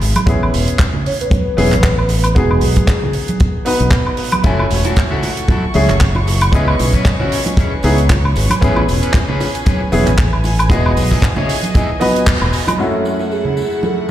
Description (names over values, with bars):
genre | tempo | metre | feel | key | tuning
nu-disco, nu disco | 115 BPM | 4/4 | swing 55% on 16ths | F# dorian | A4 = 440 Hz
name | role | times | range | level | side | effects
modern bright fingered electric bass | bass | 0.0-12.5 s | E1 to C#2 | -15 LUFS | equal | none
tight funk drum kit | drums | 0.0-12.8 s | handclaps, hi-hat, woodblock | -21 LUFS | right 1 dB | low-pass filter on hats, small room ambience, low-pass filter on snare, low-pass filter on perc, low-pass filter on room
congas, tambourine and bongos | percussion | 0.2-14.1 s | none | -22 LUFS | right 2 dB | none
clear grand piano | accompaniment | 0.3-14.1 s | F#2 to G#5 | -20 LUFS | left 1 dB | tape echo
kick drum | drums | 0.3-12.4 s | none | -13 LUFS | equal | small room ambience
soft octave-layered synth lead | melody | 1.1-3.4, 12.8-14.1 s | G#4 to C#5 | -21 LUFS | right 1 dB | chorus, phaser, dub echo
warm studio violin section | sustained chords | 4.4-14.1 s | A3 to C#6 | -26 LUFS | equal | sidechain pumping
electric guitar at the edge of break-up | riff | 4.4-12.6 s | C#4 to D#5 | -24 LUFS | left 3 dB | wide subtle chorus, tape echo
room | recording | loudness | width
light reverb, small room ambience | played on a big sound system in a bare room, large studio reverb | -12 LUFS | side -12 dB against mid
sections
0.0-12.8 A section; 12.8-14.1 B section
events
band accent 12.3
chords
0.3 Amaj9; 2.4 Emaj7 (rootless); 4.4 F#m7; 6.5 C#m7; 8.6 Amaj9; 10.7 Emaj7; 12.8 F#m7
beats
| 0.27 0.80 1.32 1.84 | 2.36 2.88 3.40 3.93 | 4.45 4.97 5.49 6.01 | 6.54 7.06 7.58 8.10 | 8.62 9.14 9.67 10.19 | 10.71 11.23 11.75 12.27 | 12.80 13.32 13.84